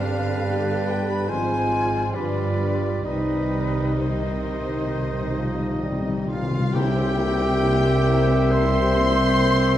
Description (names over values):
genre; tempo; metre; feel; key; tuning
classical, slow romantic movement for symphony orchestra; 62-76 BPM; 4/4; rubato; C minor; A4 = 440 Hz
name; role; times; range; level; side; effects
dark symphonic violin section; melody; 0.0-9.8 s; B4 to C6; -33 LUFS; left 1 dB; none
clear clarinet; second line; 0.0-9.8 s; D4 to C5; -29 LUFS; left 2 dB; none
concert flute; second line; 0.0-9.8 s; B4 to C6; -30 LUFS; left 1 dB; none
warm oboe; second line; 0.0-9.8 s; F4 to Eb5; -33 LUFS; right 1 dB; none
warm symphonic violin section; second line; 0.0-9.8 s; G4 to B5; -36 LUFS; left 2 dB; none
dark bassoon; accompaniment; 0.0-6.7 s; Eb3 to Ab3; -31 LUFS; right 2 dB; none
rich studio viola section; accompaniment; 0.0-9.8 s; D3 to G4; -31 LUFS; equal; none
mellow French horn section; sustained chords; 0.0-9.8 s; Eb3 to Bb4; -28 LUFS; left 4 dB; none
rich chamber cello section; bass; 0.0-9.8 s; G2 to C3; -29 LUFS; right 2 dB; none
rich symphonic double bass section; bass; 0.0-9.8 s; G1 to C2; -27 LUFS; right 2 dB; none
cymbal swell and tam-tam; percussion; 3.1-9.8 s; none; -34 LUFS; left 2 dB; none
timpani; percussion; 3.1-8.0 s; C3; -28 LUFS; left 2 dB; none
warm trumpet; stabs; 6.7-9.8 s; E5; -28 LUFS; right 1 dB; none
warm trombone section; sustained chords; 6.8-9.8 s; C3 to G3; -29 LUFS; right 2 dB; none
room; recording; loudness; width
wet recital hall reverb, RT60 1.7 s; dark, warm production; -20 LUFS; side -12 dB against mid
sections
0.0-6.7 A section; 6.7-9.8 B section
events
timpani fill 3.1-6.7; band accent 6.7-7.6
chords
0.0 G; 1.3 Fm/Ab; 2.1 G7; 3.1 Cm; 6.7 C7